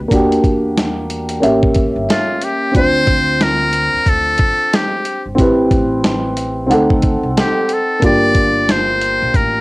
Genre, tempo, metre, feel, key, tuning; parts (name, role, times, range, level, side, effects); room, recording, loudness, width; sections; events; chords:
hip hop, jazz-hop; 91 BPM; 4/4; swing 62% on 16ths; A4 = 439 Hz
dark upright piano; accompaniment; 0.0-9.6 s; Bb3 to F#5; -16 LUFS; equal; cassette tape
upright bass; bass; 0.0-9.6 s; G1 to E2; -24 LUFS; equal
dusty soul sampler-style drum kit; drums; 0.1-9.5 s; hi-hat, kick drum, snare drum; -17 LUFS; equal; cassette tape
trumpet with metal mute; melody; 2.1-9.6 s; F4 to D5; -15 LUFS; left 1 dB; cassette tape
light reverb; home recording on cassette; -12 LUFS; side -22 dB against mid
0.0-9.6 A section
0.1 Em7b5; 1.4 A7b9; 2.7 Dm7; 5.4 Am9; 6.7 D7b9; 8.0 Gm9